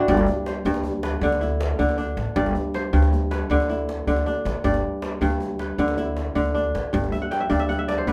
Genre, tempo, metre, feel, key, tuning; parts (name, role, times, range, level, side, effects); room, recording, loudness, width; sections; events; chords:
west african traditional, West African string and xylophone music; 105 BPM (dotted quarters); 12/8; straight; G major; A4 = 440 Hz
kora; arpeggios; 0.0-8.1 s; G2 to G5; -26 LUFS; equal
upright bass; bass; 0.1-8.1 s; G1 to D2; -28 LUFS; equal
djembe; percussion; 0.1-8.1 s; -31 LUFS; equal
light reverb; -23 LUFS; mono
0.0-8.1 A section
kora fill 7.1-8.1
0.1 G; 1.2 D5; 2.4 G; 3.5 D5; 4.6 G; 5.8 D5; 6.9 G5